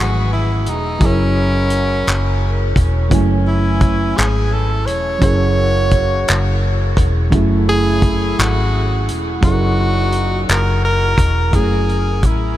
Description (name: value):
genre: slow six-eight R&B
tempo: 57 BPM (dotted quarters)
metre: 6/8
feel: straight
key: unclear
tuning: A4 = 440 Hz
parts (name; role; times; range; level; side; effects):
- clear tenor saxophone; melody; 0.0-12.6 s; C#4 to C#5; -20 LUFS; equal; ping-pong delay
- mellow FM electric piano; accompaniment; 0.0-12.6 s; E3 to G#5; -21 LUFS; right 2 dB; chorus
- warm horn section; stabs; 0.0-11.2 s; A#2 to G#5; -28 LUFS; left 3 dB; ping-pong delay
- vintage muted fingered electric bass; bass; 0.0-12.6 s; E1 to A1; -17 LUFS; equal; none
- warm soul drum kit; drums; 0.7-12.4 s; handclaps, hi-hat, kick drum; -19 LUFS; equal; none
room: light reverb, studio reverb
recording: none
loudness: -13 LUFS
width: side -14 dB against mid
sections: 0.0-11.5 A section; 11.5-12.6 B section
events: none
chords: 0.0 F#m9; 1.0 F#7; 3.1 F#m9; 5.2 F#7; 7.3 F#m9; 9.4 F#7; 11.5 F#m9